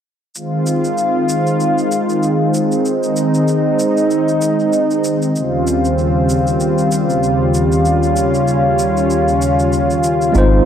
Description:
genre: sunset chillout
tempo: 96 BPM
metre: 4/4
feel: swing 57% on 16ths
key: Ab major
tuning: A4 = 440 Hz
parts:
  - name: lush unison pad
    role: sustained chords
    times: 0.4-10.7 s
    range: Eb2 to C5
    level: -13 LUFS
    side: equal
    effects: chorus
  - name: shaker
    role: drums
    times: 0.4-10.5 s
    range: none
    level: -28 LUFS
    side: equal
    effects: none
  - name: tine electric piano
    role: accompaniment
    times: 10.3-10.7 s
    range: Ab3 to C5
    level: -12 LUFS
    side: equal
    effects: medium stereo tremolo, auto-pan
  - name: round analog bass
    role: bass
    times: 10.4-10.6 s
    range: Ab1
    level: -11 LUFS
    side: equal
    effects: none
room: moderate plate reverb, RT60 2.2 s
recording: worn, warbling old tape, cassette tape, warbly pitch drift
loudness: -13 LUFS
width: side -9 dB against mid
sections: 0.4-10.7 A section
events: none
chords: 0.4 Ab6; 5.4 Eb13

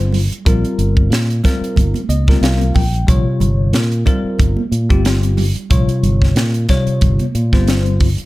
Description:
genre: electric jazz fusion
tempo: 91 BPM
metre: 4/4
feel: swing 55% on 16ths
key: Bb dorian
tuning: A4 = 435 Hz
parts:
  - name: bell-like tine electric piano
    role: accompaniment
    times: 0.0-8.1 s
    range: C3 to G5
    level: -19 LUFS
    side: left 2 dB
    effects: medium stereo tremolo, phaser
  - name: fingered electric bass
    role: bass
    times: 0.0-8.2 s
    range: G1 to Bb2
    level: -15 LUFS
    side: equal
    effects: none
  - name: crisp fusion drum kit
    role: drums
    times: 0.0-8.3 s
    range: hi-hat, kick drum, snare drum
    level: -16 LUFS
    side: equal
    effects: none
  - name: congas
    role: percussion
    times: 0.1-8.2 s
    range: none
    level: -25 LUFS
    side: right 6 dB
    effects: none
room: light reverb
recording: none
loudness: -12 LUFS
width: side -18 dB against mid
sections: 0.0-8.3 A section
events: tine electric piano fill 1.8-3.1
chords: 0.0 Bbm69

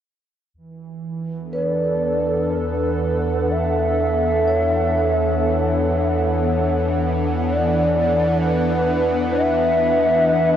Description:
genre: ambient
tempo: 61 BPM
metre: 3/4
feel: straight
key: unclear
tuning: A4 = 439 Hz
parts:
  - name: round analog bass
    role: bass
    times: 0.5-10.6 s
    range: E2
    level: -26 LUFS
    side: equal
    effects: none
  - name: bowed-like drone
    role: drone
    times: 3.0-10.6 s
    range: E3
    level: -28 LUFS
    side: equal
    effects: built-in reverb
  - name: airy breathy pad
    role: sustained chords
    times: 0.7-10.6 s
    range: E3 to F#5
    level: -21 LUFS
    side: right 1 dB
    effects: chorus
  - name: mellow hollow shakuhachi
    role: melody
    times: 1.5-10.6 s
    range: B4 to E5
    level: -21 LUFS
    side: equal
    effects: tape echo
  - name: vibraphone with medium mallets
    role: arpeggios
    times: 1.5-10.6 s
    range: B4 to C#5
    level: -28 LUFS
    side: equal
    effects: tape echo
room: wet huge ambient reverb, RT60 7.5 s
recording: worn, warbling old tape, cassette tape, warbly pitch drift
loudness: -17 LUFS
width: side -9 dB against mid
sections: 0.6-10.6 A section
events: fade-out on vibraphone 0.6-10.6; fade-out on analog synth bass 0.6-10.6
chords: 0.6 E7sus4

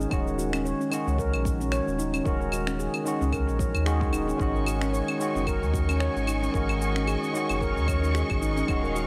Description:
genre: organic downtempo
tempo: 112 BPM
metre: 4/4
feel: swing 56% on 16ths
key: unclear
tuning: A4 = 439 Hz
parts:
  - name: tine electric piano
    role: accompaniment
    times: 0.0-9.1 s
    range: Eb3 to Gb4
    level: -33 LUFS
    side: equal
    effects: sidechain pumping, digital delay
  - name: handpan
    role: arpeggios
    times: 0.0-9.1 s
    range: Db4 to Db5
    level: -32 LUFS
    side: equal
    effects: low-pass filter, digital delay
  - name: warm sub bass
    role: bass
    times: 0.0-9.1 s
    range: Eb1 to Eb2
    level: -31 LUFS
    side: equal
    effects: sidechain pumping
  - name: electronic shaker, claves and finger snaps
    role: drums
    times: 0.0-9.1 s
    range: none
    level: -38 LUFS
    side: equal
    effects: studio reverb
  - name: electronic kick drum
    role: drums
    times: 0.1-8.8 s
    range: none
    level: -33 LUFS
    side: equal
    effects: studio reverb
  - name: warm studio string section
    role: sustained chords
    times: 4.4-9.1 s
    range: Gb4 to Db6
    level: -36 LUFS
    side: equal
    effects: sidechain pumping
room: light reverb, digital ambience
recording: none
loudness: -26 LUFS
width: mono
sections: 0.0-9.1 A section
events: none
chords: 0.1 Ebm7; 4.4 Ab7sus4

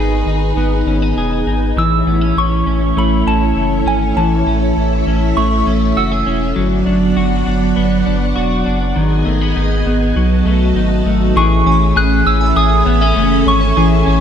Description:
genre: dream pop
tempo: 100 BPM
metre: 4/4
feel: straight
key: A lydian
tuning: A4 = 439 Hz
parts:
  - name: string machine, violins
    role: sustained chords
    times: 0.0-14.2 s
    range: F#3 to A5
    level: -19 LUFS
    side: right 2 dB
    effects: ensemble chorus
  - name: clean electric guitar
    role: arpeggios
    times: 0.0-14.2 s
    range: D#3 to G#4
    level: -17 LUFS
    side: left 2 dB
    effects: analog chorus, ping-pong delay
  - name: saturated sub bass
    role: bass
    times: 0.0-14.2 s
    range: E1 to B1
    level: -16 LUFS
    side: equal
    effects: none
  - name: soft synth bell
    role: melody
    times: 1.8-6.4, 11.4-14.2 s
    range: G#5 to F#6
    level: -18 LUFS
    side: right 1 dB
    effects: chorus, phaser, ping-pong delay
  - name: glassy synth bell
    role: texture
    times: 11.7-14.2 s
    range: C#5 to B5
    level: -27 LUFS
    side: right 4 dB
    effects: chorus, ping-pong delay
room: moderate lush hall reverb, RT60 2.1 s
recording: dark, warm production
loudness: -12 LUFS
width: side -8 dB against mid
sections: 0.0-11.4 A section; 11.4-14.2 B section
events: none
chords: 0.0 G#m; 1.8 Amaj7; 6.6 Gmaj7; 9.0 G#m; 10.2 B7; 11.4 Amaj7

